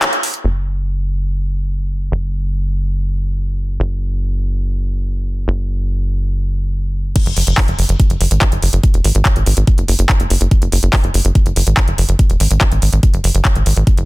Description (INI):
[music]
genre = psychedelic trance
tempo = 143 BPM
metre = 4/4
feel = straight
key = unclear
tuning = A4 = 442 Hz
[part]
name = garage drum kit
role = drums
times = 0.0-0.4, 7.2-14.1 s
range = crash cymbal, handclaps, hi-hat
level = -19 LUFS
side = equal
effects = none
[part]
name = tight sequencer bass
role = bass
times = 0.4-14.0 s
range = E1 to G#1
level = -15 LUFS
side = equal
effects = none
[part]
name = electronic kick drum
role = drums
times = 7.2-14.0 s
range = none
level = -13 LUFS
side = equal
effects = none
[sound]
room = little or no reverb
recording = dense, heavily limited modern master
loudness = -13 LUFS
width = side -21 dB against mid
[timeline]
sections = 0.4-7.2 A section; 7.2-14.1 B section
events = break 0.0-0.4; band accent 0.0; drop 7.2-14.1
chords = none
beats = 0.02 | 0.44 0.86 1.28 1.70 | 2.12 2.54 2.96 3.38 | 3.80 4.22 4.64 5.06 | 5.48 5.90 6.32 6.74 | 7.16 7.58 8.00 8.42 | 8.84 9.26 9.67 10.09 | 10.51 10.93 11.35 11.77 | 12.19 12.61 13.03 13.45 | 13.87